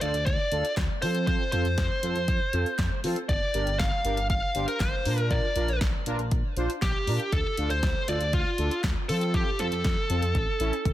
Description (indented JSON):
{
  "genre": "synth-pop",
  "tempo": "119 BPM",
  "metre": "4/4",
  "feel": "straight",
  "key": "unclear",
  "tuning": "A4 = 440 Hz",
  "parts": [
    { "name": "smooth overdriven lead guitar", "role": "melody", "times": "0.0-10.9 s", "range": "F4 to F5", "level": "-29 LUFS", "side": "equal", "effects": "digital delay" },
    { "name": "analog synth brass", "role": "accompaniment", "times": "0.0-10.7 s", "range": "C4 to C5", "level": "-33 LUFS", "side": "right 1 dB", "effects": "chorus" },
    { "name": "smooth gliding synth bass", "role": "bass", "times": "0.0-10.9 s", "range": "G1 to F3", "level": "-29 LUFS", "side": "equal", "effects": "none" },
    { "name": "deep house drum kit", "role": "drums", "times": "0.0-10.9 s", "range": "handclaps, hi-hat, kick drum, snare drum, toms", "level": "-28 LUFS", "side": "equal", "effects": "none" }
  ],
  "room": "light reverb, digital ambience",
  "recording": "dense, heavily limited modern master",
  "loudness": "-24 LUFS",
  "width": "side -14 dB against mid",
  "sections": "0.0-10.9 A section",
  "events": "none",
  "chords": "0.0 Dm; 1.0 F; 3.3 Gm7; 5.1 Bb; 7.3 Dm; 9.1 F; 10.3 A"
}